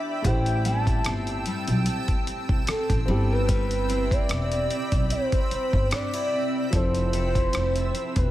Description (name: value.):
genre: contemporary R&B.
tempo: 74 BPM.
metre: 4/4.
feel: swing 54% on 16ths.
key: unclear.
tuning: A4 = 439 Hz.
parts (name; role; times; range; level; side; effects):
gliding portamento lead; melody; 0.0-8.3 s; A4 to A5; -28 LUFS; equal; chorus, tape echo.
dark baby grand piano; accompaniment; 0.0-8.3 s; E3 to D5; -35 LUFS; right 1 dB; tape echo.
granular cloud pad; sustained chords; 0.0-8.3 s; C4 to E6; -32 LUFS; right 2 dB; built-in reverb, sidechain pumping.
picked steel-string acoustic guitar; arpeggios; 0.0-8.3 s; A2 to B4; -34 LUFS; left 4 dB; tape echo.
upright bass; bass; 0.2-8.3 s; E1 to C2; -26 LUFS; equal; none.
dusty soul sampler-style drum kit; drums; 0.2-8.3 s; hi-hat, kick drum, rim click; -26 LUFS; equal; none.
room: small room ambience.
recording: echo-heavy mix.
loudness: -22 LUFS.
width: side -14 dB against mid.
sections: 0.0-8.3 A section.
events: none.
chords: 0.2 Am7; 3.1 Cmaj7; 6.7 Fmaj7.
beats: | 0.24 1.05 1.86 2.68 | 3.49 4.30 5.11 5.92 | 6.73 7.54.